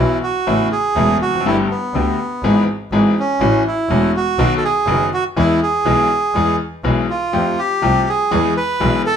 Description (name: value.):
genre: tango.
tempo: 122 BPM.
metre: 4/4.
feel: rubato.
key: unclear.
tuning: A4 = 439 Hz.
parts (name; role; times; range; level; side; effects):
bandoneon; melody; 0.0-9.2 s; B3 to B4; -18 LUFS; right 3 dB; none.
bright concert grand piano; accompaniment; 0.0-9.0 s; E1 to G#4; -18 LUFS; left 3 dB; none.
clear double bass; bass; 0.0-9.0 s; E1 to F2; -20 LUFS; right 1 dB; none.
room: moderate studio reverb, RT60 0.8 s.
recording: minimal, uncompressed stereo recording.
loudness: -14 LUFS.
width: side -8 dB against mid.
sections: 0.0-9.2 A section.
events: none.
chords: 0.5 Aadd9; 1.5 Gadd9; 2.4 E/G#; 3.4 A6; 4.4 B; 5.4 E; 7.3 Fadd9; 8.3 E.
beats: 0.47 0.96 | 1.45 1.94 2.43 2.92 | 3.41 3.90 4.39 4.88 | 5.37 5.86 6.35 6.84 | 7.33 7.83 8.32 8.81.